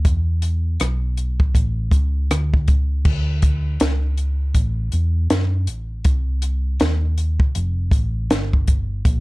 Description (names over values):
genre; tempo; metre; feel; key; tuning
hip hop, jazz-hop; 80 BPM; 4/4; swing 59% on 16ths; unclear; A4 = 440 Hz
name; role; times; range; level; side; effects
hollow-body short-scale fingered electric bass; bass; 0.0-9.2 s; F1 to F#2; -20 LUFS; equal; none
compact cocktail drum kit; drums; 0.0-9.2 s; crash cymbal, hi-hat, kick drum, rim click, snare drum; -18 LUFS; equal; none
room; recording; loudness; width
little or no reverb; dry, gritty hardware recording; -17 LUFS; side -22 dB against mid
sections
0.0-3.0 A section; 3.0-9.2 B section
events
none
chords
none